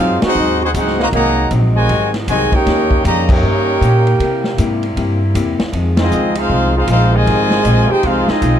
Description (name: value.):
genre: jazz, big band swing.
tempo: 156 BPM.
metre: 4/4.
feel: swing 64% on 8ths.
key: unclear.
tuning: A4 = 439 Hz.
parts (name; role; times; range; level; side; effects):
warm trumpet section; melody; 0.0-8.6 s; C4 to Bb5; -17 LUFS; left 1 dB; none.
clear trombone section; second line; 0.0-8.6 s; C3 to G4; -18 LUFS; right 2 dB; none.
archtop guitar, miked and amplified; accompaniment; 0.0-8.6 s; F2 to G4; -23 LUFS; left 4 dB; none.
warm saxophone section; sustained chords; 0.0-8.6 s; C3 to F4; -27 LUFS; equal; none.
upright bass; bass; 0.0-8.6 s; Ab1 to C3; -16 LUFS; equal; none.
vintage drum kit; drums; 0.2-8.5 s; crash cymbal, hi-hat, kick drum, ride cymbal, snare drum; -21 LUFS; equal; none.
room: light reverb.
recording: dark, warm production.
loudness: -12 LUFS.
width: side -9 dB against mid.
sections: 0.0-8.6 A section.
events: band accent 0.2, 3.2, 5.9.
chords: 0.0 Ab7; 2.7 Eb7; 4.2 C7; 5.7 Fm7.